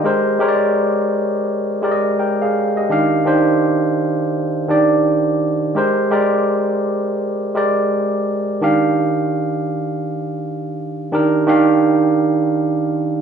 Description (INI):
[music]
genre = R&B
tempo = 84 BPM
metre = 4/4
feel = swing 61% on 16ths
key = Eb major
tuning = A4 = 440 Hz
[part]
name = barky tine electric piano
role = solo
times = 0.0-13.2 s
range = Eb3 to G5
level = -15 LUFS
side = right 1 dB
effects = overdrive
[sound]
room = wet large studio reverb, RT60 1.5 s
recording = band playing live in one room, studio reverb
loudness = -15 LUFS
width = side -7 dB against mid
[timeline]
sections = 0.0-8.6 A section; 8.6-13.2 B section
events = none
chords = 0.0 Abmaj9; 2.9 Ebmaj9; 5.8 Abmaj9; 8.6 Ebmaj9